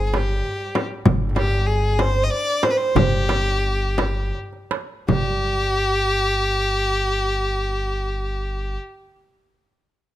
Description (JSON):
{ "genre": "Arabic maqam ensemble", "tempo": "52-65 BPM (dotted quarters)", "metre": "6/8", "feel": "straight", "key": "unclear", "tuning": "A4 = 439 Hz", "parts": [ { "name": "rich violin", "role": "melody", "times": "0.0-8.8 s", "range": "G4 to Eb5", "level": "-22 LUFS", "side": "left 1 dB", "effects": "none" }, { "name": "oud", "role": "second line", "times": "0.0-8.7 s", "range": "G3 to D4", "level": "-29 LUFS", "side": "right 3 dB", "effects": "none" }, { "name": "upright bass", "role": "bass", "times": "0.0-8.8 s", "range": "G1", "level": "-24 LUFS", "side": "equal", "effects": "none" }, { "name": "darbuka", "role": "percussion", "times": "0.1-5.4 s", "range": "none", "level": "-26 LUFS", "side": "right 7 dB", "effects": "none" }, { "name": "frame drum", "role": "percussion", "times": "0.1-5.4 s", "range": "none", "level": "-22 LUFS", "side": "left 3 dB", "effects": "none" } ], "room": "light reverb", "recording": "close, detailed microphones", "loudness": "-19 LUFS", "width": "side -13 dB against mid", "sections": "0.0-5.1 A section; 5.1-9.7 B section", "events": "slowing down 1.1-5.1", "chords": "none", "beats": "0.13 | 1.06 1.99 | 2.96 3.99 | 5.09 6.25 | 7.40 8.56" }